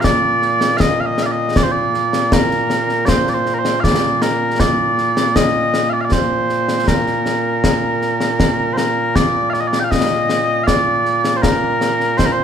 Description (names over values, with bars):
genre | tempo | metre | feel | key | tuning
scottish traditional, Scottish pipe music | 79 BPM | 3/4 | straight | Bb major | A4 = 439 Hz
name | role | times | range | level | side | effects
mellow small bagpipes | melody | 0.0-12.4 s | Bb2 to G5 | -16 LUFS | right 1 dB | none
concert snare drum and concert bass drum | drums | 0.0-12.4 s | none | -18 LUFS | left 1 dB | none
room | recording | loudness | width
wet stone room reverb, RT60 1.1 s | band playing live in one room | -14 LUFS | side -8 dB against mid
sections
0.0-9.2 A section; 9.2-12.4 A section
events
none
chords
none